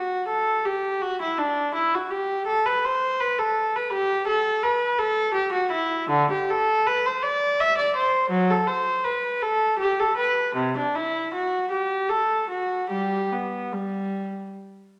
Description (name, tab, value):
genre	classical, baroque-style suite movement for unaccompanied viola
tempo	71-85 BPM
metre	3/4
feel	rubato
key	G major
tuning	A4 = 436 Hz
part	warm viola	solo	0.0-14.5 s	C3 to E5	-24 LUFS	equal	none
room	wet stone room reverb, RT60 1.4 s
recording	none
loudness	-24 LUFS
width	mono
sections	0.0-15.0 A section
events	none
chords	none